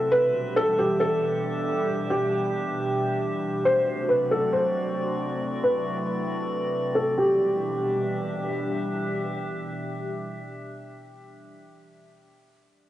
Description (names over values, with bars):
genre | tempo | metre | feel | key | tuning
hip hop | 136 BPM | 4/4 | half-time | E minor | A4 = 440 Hz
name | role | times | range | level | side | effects
felt-muted upright piano | melody | 0.0-8.5 s | G4 to C5 | -24 LUFS | equal | low-pass filter, cassette tape, tape echo
airy breathy pad | sustained chords | 0.0-11.5 s | B2 to G4 | -30 LUFS | equal | chorus, phaser, low-pass filter, cassette tape
drifting glass-harmonics texture | texture | 0.0-11.5 s | C4 to E5 | -34 LUFS | left 1 dB | chorus, built-in reverb, cassette tape
room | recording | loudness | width
moderate spring reverb, RT60 1.8 s, small room ambience | home recording on cassette, nothing above 10.7 kHz | -23 LUFS | side -13 dB against mid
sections
0.0-7.2 A section; 7.2-10.7 B section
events
filter sweep 0.0-7.2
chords
0.1 Em7; 3.6 D7; 7.2 Em7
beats
| 0.12 0.56 1.00 1.44 | 1.88 2.32 2.76 3.21 | 3.65 4.09 4.53 4.97 | 5.41 5.85 6.29 6.74 | 7.18 7.62 8.06 8.50 | 8.94 9.38 9.82 10.26